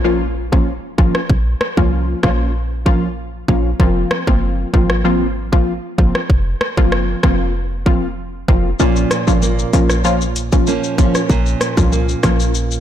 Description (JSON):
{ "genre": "dancehall", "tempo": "96 BPM", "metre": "4/4", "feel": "straight", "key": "Bb minor", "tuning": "A4 = 440 Hz", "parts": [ { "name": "punchy chord stab", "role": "accompaniment", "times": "0.0-12.5 s", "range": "F3 to F4", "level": "-19 LUFS", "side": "left 1 dB", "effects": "chorus" }, { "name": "short 808-style bass", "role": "bass", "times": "0.0-12.8 s", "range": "F1 to C2", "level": "-18 LUFS", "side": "equal", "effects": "none" }, { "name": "impact", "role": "sound effects", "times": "0.4-1.3 s", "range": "none", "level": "barely audible", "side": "none", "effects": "none" }, { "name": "island pop drum kit", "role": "drums", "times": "0.5-12.8 s", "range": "hi-hat, kick drum, rim click, shaker", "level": "-17 LUFS", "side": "equal", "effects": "soft clipping on snare" }, { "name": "nylon-string guitar", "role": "arpeggios", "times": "8.8-12.8 s", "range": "Bb2 to Db4", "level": "-21 LUFS", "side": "right 6 dB", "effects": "none" } ], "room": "light reverb, digital ambience", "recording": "blown-out, overdriven recording, overdrive", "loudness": "-14 LUFS", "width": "side -11 dB against mid", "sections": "0.0-12.8 A section", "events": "break 0.0-8.8; impact 0.0-1.3; kick muted 8.8-10.0", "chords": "0.0 Bbm; 3.8 Fsus4; 8.8 Bbm" }